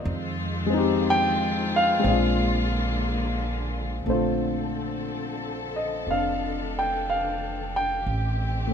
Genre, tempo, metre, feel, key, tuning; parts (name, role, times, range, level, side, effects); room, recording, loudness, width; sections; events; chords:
jazz ballad; 60 BPM; 4/4; swing 66% on 8ths; Bb major from 4.1 s; A4 = 441 Hz
warm grand piano; accompaniment; 0.0-8.7 s; D3 to G5; -25 LUFS; left 1 dB
warm symphonic string section; sustained chords; 0.0-8.7 s; D3 to A4; -31 LUFS; left 2 dB
upright bass; bass; 0.0-8.7 s; F1 to F2; -30 LUFS; right 1 dB
light reverb; close, detailed microphones; -23 LUFS; side -7 dB against mid
0.0-4.1 A section; 4.1-8.7 B section
0.1 Fm7; 2.1 Bb7; 4.1 Bbmaj9; 8.1 Am7b5